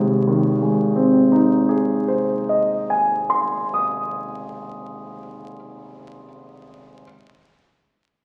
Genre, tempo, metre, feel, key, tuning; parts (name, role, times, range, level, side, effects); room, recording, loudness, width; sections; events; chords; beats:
classical, romantic character piece for solo piano; 42 BPM (dotted quarters); 6/8; rubato; A4 = 440 Hz
warm grand piano; solo; 0.0-7.0 s; G#1 to D#6; -20 LUFS; equal
wet recital hall reverb, RT60 1.5 s; very old 78 rpm record, vinyl crackle; -19 LUFS; mono
0.0-4.8 A section
0.0 G#
0.46 | 1.90 3.34